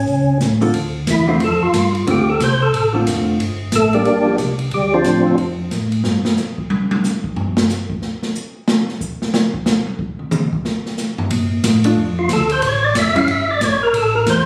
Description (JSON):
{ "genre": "soul jazz organ trio", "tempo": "182 BPM", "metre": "4/4", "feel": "swing 63% on 8ths", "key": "D minor", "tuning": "A4 = 441 Hz", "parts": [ { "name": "percussive tonewheel organ", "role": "melody", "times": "0.0-5.4, 12.2-14.5 s", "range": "F3 to F5", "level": "-18 LUFS", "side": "equal", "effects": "slow rotary speaker, overdrive, chorus vibrato" }, { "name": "mellow tonewheel organ", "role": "bass", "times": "0.0-6.2, 11.3-14.5 s", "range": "F1 to Bb2", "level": "-22 LUFS", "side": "equal", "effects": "chorus vibrato, slow rotary speaker" }, { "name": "open jazz drum kit", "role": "drums", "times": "0.1-14.4 s", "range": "hi-hat, kick drum, ride cymbal, snare drum, toms", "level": "-23 LUFS", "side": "equal", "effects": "none" }, { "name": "vintage hollow-body jazz guitar", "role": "accompaniment", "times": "0.6-5.4, 11.8-13.3 s", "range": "D3 to A4", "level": "-21 LUFS", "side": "equal", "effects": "none" } ], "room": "wet large studio reverb, RT60 0.8 s", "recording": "recorded on a phone in the room, studio reverb", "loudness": "-17 LUFS", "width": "mono", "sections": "0.7-14.5 A section", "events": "tonewheel organ solo 0.7-14.5; drum solo 6.0-11.3", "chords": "0.0 A; 0.7 Dm7; 3.4 Gm; 4.7 Dm7; 6.0 N.C.; 11.3 Bbmaj7; 12.6 A7; 13.9 D7(no3) (rootless)" }